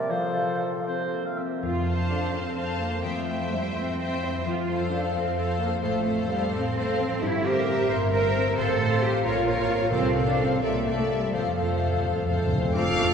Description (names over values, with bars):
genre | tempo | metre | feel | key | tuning
classical | 77-90 BPM (dotted quarters) | 6/8 | rubato | F major | A4 = 440 Hz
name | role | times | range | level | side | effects
mellow concert flute | second line | 0.0-0.9, 12.8-13.1 s | C5 to F5 | -33 LUFS | equal | none
warm clarinet | second line | 0.0-1.4 s | A4 to Bb4 | -38 LUFS | equal | none
warm oboe | second line | 0.0-1.6, 12.8-13.1 s | A4 to F5 | -36 LUFS | right 2 dB | none
warm bassoon | accompaniment | 0.0-1.4 s | C3 to F3 | -36 LUFS | equal | none
concert harp | arpeggios | 0.0-13.1 s | G2 to F5 | -30 LUFS | left 4 dB | none
rich symphonic cello section | bass | 1.6-13.1 s | F2 to C5 | -29 LUFS | right 3 dB | none
warm symphonic double bass section | bass | 1.6-13.1 s | F1 to F2 | -30 LUFS | right 2 dB | none
timpani | percussion | 1.6-2.3, 9.9-12.7 s | F2 to C3 | -31 LUFS | equal | none
warm symphonic violin section | melody | 1.9-13.1 s | E5 to D6 | -35 LUFS | left 6 dB | none
rich symphonic violin section | second line | 1.9-13.1 s | C5 to F5 | -33 LUFS | left 1 dB | none
clear symphonic viola section | accompaniment | 1.9-13.1 s | A3 to C5 | -33 LUFS | right 2 dB | none
mellow French horn section | sustained chords | 2.1-13.1 s | F4 to F5 | -32 LUFS | left 2 dB | none
room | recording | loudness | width
wet cathedral reverb, RT60 6.5 s | recorded in a church or concert hall | -23 LUFS | side -7 dB against mid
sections
0.0-1.6 A section; 1.6-12.8 B section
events
timpani fill 11.3-12.8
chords
0.1 F; 3.0 C/F; 4.5 F; 5.8 F/A; 7.2 C7/G; 8.6 F/A; 9.2 Bbm; 9.9 F/C; 10.6 C13; 11.3 F